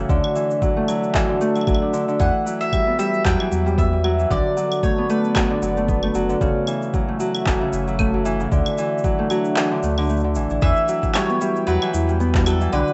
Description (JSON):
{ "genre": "folktronica", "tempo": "114 BPM", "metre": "4/4", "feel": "swing 56% on 16ths", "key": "E dorian", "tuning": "A4 = 440 Hz", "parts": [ { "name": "warbly tape-like pad", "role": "sustained chords", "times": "0.0-12.9 s", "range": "F#3 to G5", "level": "-32 LUFS", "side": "equal", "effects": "chorus, built-in reverb" }, { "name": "Celtic harp", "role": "arpeggios", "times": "0.0-12.9 s", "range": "C#3 to E4", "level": "-23 LUFS", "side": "equal", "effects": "digital delay" }, { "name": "warm sub bass", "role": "bass", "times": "0.0-12.8 s", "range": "F#1 to E2", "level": "-25 LUFS", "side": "equal", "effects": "none" }, { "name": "electronic kick drum", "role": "drums", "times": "0.1-12.4 s", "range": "none", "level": "-25 LUFS", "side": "equal", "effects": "none" }, { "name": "electronic shaker, claves and handclaps", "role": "drums", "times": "0.1-12.9 s", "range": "none", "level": "-29 LUFS", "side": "equal", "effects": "overdrive" }, { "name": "mandolin", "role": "melody", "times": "2.2-6.1, 10.6-12.9 s", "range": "A4 to G5", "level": "-27 LUFS", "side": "equal", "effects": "digital delay" }, { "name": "marimba with medium mallets", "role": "second line", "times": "10.6-12.9 s", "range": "E4 to B5", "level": "-33 LUFS", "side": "equal", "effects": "none" } ], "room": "little or no reverb", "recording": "rough home demo mix, nothing above 8.0 kHz", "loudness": "-20 LUFS", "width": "mono", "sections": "0.0-10.6 A section; 10.6-12.9 B section", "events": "kick drops out 9.6-10.6", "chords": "0.1 Dadd9; 2.2 Emadd9; 4.3 Bm7; 6.4 F#m7; 8.5 Dadd9; 10.6 Emadd9" }